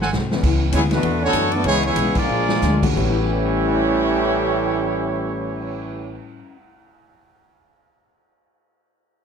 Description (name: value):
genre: jazz, big band swing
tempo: 171-201 BPM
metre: 4/4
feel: swing 60% on 8ths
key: A mixolydian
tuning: A4 = 439 Hz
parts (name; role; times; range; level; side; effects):
- picked steel-string acoustic guitar; accompaniment; 0.0-6.6 s; G#2 to F#4; -27 LUFS; left 5 dB; none
- upright bass; bass; 0.0-6.2 s; G#1 to F#2; -24 LUFS; equal; none
- swinging big-band drum kit; drums; 0.0-5.7 s; crash cymbal, cymbal swell, hi-hat, kick drum, ride cymbal, snare drum; -27 LUFS; right 1 dB; none
- warm concert grand piano; accompaniment; 0.3-7.1 s; A2 to B6; -28 LUFS; left 4 dB; none
- clear trumpet section; melody; 0.7-6.2 s; A3 to D5; -23 LUFS; equal; plate reverb
- clear trombone section; second line; 0.7-6.2 s; A2 to D4; -23 LUFS; right 3 dB; none
room: moderate large studio reverb, RT60 0.8 s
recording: none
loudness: -17 LUFS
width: side -6 dB against mid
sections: 0.4-3.0 A section; 3.0-5.8 B section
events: drum fill 0.0-0.4, 2.3-2.6; slowing down 0.4-3.0; band accent 2.1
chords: 0.4 C#m7; 1.0 E9sus4; 1.6 C#m7; 2.3 Bb7; 3.0 A7